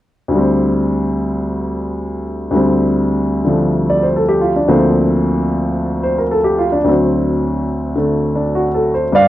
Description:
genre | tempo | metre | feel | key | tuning
solo jazz | 110 BPM | 4/4 | swing 69% on 8ths, rubato | unclear | A4 = 440 Hz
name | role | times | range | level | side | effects
warm upright piano | solo | 0.3-9.3 s | D2 to F5 | -13 LUFS | equal | none
room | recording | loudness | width
light reverb | worn, warbling old tape, cassette tape, warbly pitch drift | -13 LUFS | side -14 dB against mid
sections
0.3-9.1 A section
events
none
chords
0.3 D7sus4; 4.7 Bbmaj9/D; 6.9 D7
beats
| 0.34 0.89 1.45 1.99 | 2.54 3.08 3.62 4.15 | 4.69 5.23 5.77 6.32 | 6.87 7.42 7.98 8.55 | 9.13

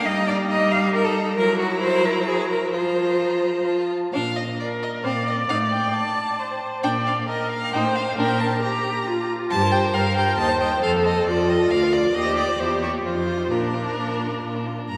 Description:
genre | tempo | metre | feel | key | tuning
quick classical-period movement for string quartet | 134 BPM | 3/4 | rubato | Bb major | A4 = 441 Hz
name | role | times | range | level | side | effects
rich violin | melody | 0.0-15.0 s | Bb4 to Bb5 | -29 LUFS | equal | none
clear violin | second line | 0.0-14.9 s | C4 to Eb5 | -32 LUFS | equal | none
clear viola | accompaniment | 0.0-14.7 s | F3 to D5 | -26 LUFS | equal | none
clear cello | bass | 0.0-15.0 s | D2 to F5 | -28 LUFS | equal | none
room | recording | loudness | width
wet church reverb, RT60 3.5 s | none | -22 LUFS | mono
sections
0.0-4.1 A section; 4.1-14.9 B section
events
none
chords
0.1 Eb/G; 1.4 Gb7; 2.7 Fsus4; 3.7 F; 4.1 Bb; 5.0 C7(no3)/Bb; 5.5 Amadd11; 6.8 Bb; 7.7 F7/A; 8.2 Bb5; 9.5 Gm; 10.4 Cm/Eb; 10.8 F; 11.7 Bb/D; 12.1 Cm/Eb; 12.6 Em; 13.0 F5; 13.5 Bb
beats
| 0.06 0.50 0.94 | 1.38 1.83 2.28 | 2.74 3.20 3.67 | 4.13 4.58 5.04 | 5.49 5.94 6.39 | 6.84 7.29 7.74 | 8.18 8.62 9.07 | 9.51 9.95 10.39 | 10.83 11.27 11.71 | 12.14 12.59 13.04 | 13.50 13.97 14.43 | 14.90

